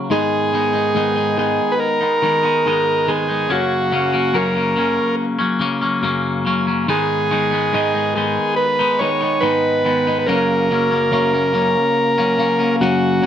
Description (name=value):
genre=rock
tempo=71 BPM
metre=4/4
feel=straight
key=G# minor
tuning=A4 = 440 Hz
part: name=twangy electric guitar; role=riff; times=0.0-13.3 s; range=F#2 to D#4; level=-18 LUFS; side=left 2 dB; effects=phaser
part: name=combo organ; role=melody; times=0.1-13.3 s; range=F#4 to C#5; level=-17 LUFS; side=right 2 dB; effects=slapback echo
room=light reverb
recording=dry, close 1970s-style studio recording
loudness=-15 LUFS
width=side -9 dB against mid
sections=0.1-13.3 A section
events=none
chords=0.1 G#m; 3.5 F#; 6.9 G#m; 10.3 F#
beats=| 0.11 0.95 1.80 2.65 | 3.50 4.34 5.19 6.04 | 6.89 7.74 8.58 9.43 | 10.27 11.12 11.96 12.80